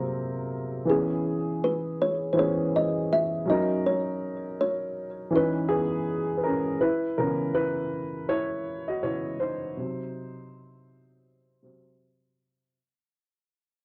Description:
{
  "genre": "hip hop",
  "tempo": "81 BPM",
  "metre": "4/4",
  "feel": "swing 59% on 16ths",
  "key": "C# dorian",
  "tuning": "A4 = 440 Hz",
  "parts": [
    { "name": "kalimba", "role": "melody", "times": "0.0-6.4 s", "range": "G#4 to E5", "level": "-30 LUFS", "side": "equal", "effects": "low-pass filter" },
    { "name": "dark upright piano", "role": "accompaniment", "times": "0.0-12.8 s", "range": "B#2 to D#5", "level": "-29 LUFS", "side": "equal", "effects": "low-pass filter" }
  ],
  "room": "wet studio reverb, RT60 0.6 s",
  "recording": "worn, warbling old tape, cassette tape, warbly pitch drift",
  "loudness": "-27 LUFS",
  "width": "mono",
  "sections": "0.0-6.8 A section; 6.8-12.7 B section",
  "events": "fade-out 6.8-12.7; upright piano solo 6.8-12.7",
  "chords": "0.0 G#9/B#; 0.9 C#m7; 3.5 D#m7; 5.3 C#m9; 6.8 C#m7; 9.8 Cdim"
}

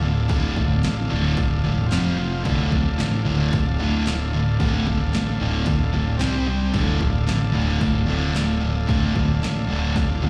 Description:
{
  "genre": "garage rock duo or trio",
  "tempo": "112 BPM",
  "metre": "4/4",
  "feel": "straight",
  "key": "D minor",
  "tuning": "A4 = 441 Hz",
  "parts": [
    { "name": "combo organ", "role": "sustained chords", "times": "0.0-10.3 s", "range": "F4 to G5", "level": "-35 LUFS", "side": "equal", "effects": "none" },
    { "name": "thick fuzz guitar", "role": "riff", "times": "0.0-10.3 s", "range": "D2 to C4", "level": "-24 LUFS", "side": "equal", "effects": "distortion, slapback echo" },
    { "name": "picked electric bass", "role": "bass", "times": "0.0-10.3 s", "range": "D1 to C2", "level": "-27 LUFS", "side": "equal", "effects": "tube saturation" },
    { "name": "punchy analog drum machine", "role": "drums", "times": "0.3-10.3 s", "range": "hi-hat, kick drum, snare drum, toms", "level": "-28 LUFS", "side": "equal", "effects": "none" }
  ],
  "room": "digital ambience",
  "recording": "live gig heard through the venue's PA, club reverb",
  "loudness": "-22 LUFS",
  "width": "mono",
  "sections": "0.0-10.3 A section",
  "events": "drum fill 10.0-10.3",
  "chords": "0.0 Dm; 1.9 F5; 2.4 Dm; 6.2 C5; 6.7 Dm"
}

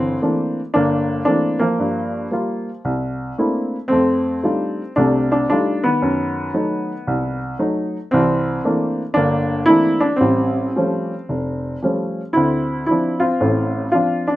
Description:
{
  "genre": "solo jazz",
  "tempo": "114 BPM",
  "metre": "4/4",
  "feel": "swing 67% on 8ths, rubato",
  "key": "C mixolydian",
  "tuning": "A4 = 438 Hz",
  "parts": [
    { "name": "warm upright piano", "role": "solo", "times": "0.0-14.4 s", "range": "E#1 to F4", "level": "-17 LUFS", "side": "equal", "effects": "none" }
  ],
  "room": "moderate studio reverb, RT60 0.6 s",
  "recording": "none",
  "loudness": "-17 LUFS",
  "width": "side -16 dB against mid",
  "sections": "0.0-14.4 A section",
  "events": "none",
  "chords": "0.0 C13; 1.8 Gm7; 2.8 C13; 3.9 F13; 6.0 F#dim7; 8.1 C13; 10.2 A7alt; 12.3 Dm7"
}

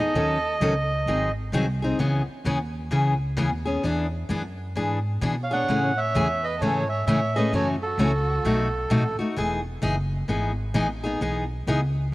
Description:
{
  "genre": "acoustic string swing (jazz manouche)",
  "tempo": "130 BPM",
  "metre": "4/4",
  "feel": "swing 63% on 8ths",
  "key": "E major",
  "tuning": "A4 = 439 Hz",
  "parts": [
    { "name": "melodica", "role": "melody", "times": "0.0-1.3, 5.4-9.2 s", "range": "A4 to F#5", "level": "-27 LUFS", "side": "right 2 dB", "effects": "cassette tape" },
    { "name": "warm violin", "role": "second line", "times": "0.0-1.0, 5.4-9.2 s", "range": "F#4 to C#5", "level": "-34 LUFS", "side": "right 3 dB", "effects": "none" },
    { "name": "picked steel-string acoustic guitar", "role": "accompaniment", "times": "0.0-11.8 s", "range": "B2 to A4", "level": "-25 LUFS", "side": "left 1 dB", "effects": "none" },
    { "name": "upright bass", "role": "bass", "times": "0.0-12.1 s", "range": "E1 to B2", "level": "-28 LUFS", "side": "equal", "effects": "none" }
  ],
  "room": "light reverb",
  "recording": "home recording on cassette",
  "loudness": "-22 LUFS",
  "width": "side -19 dB against mid",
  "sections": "0.0-12.1 A section",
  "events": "none",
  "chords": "0.1 D#m7b5; 1.1 G#7; 2.0 C#m7; 3.8 E7; 5.7 Amaj7; 7.5 F#m7; 8.5 B7; 9.4 Emaj7"
}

